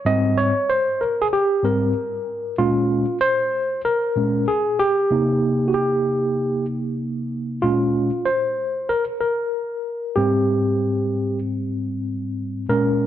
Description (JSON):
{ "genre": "hip hop", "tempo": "95 BPM", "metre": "4/4", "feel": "swing 64% on 16ths", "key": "Bb dorian", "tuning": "A4 = 443 Hz", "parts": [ { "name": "tine electric piano", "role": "solo", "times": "0.1-13.1 s", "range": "Ab2 to Eb5", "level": "-19 LUFS", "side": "equal", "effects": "medium stereo tremolo" } ], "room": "moderate echo chamber reverb, RT60 2.2 s", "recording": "dark, warm production", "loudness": "-19 LUFS", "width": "side -11 dB against mid", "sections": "0.0-2.6 A section; 2.6-13.1 B section", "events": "tine electric piano solo 0.0-2.6, 2.6-13.1", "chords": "0.1 Abmaj7; 2.6 Bbm9; 5.1 Cm7; 7.6 Bbm9; 10.2 Abmaj7" }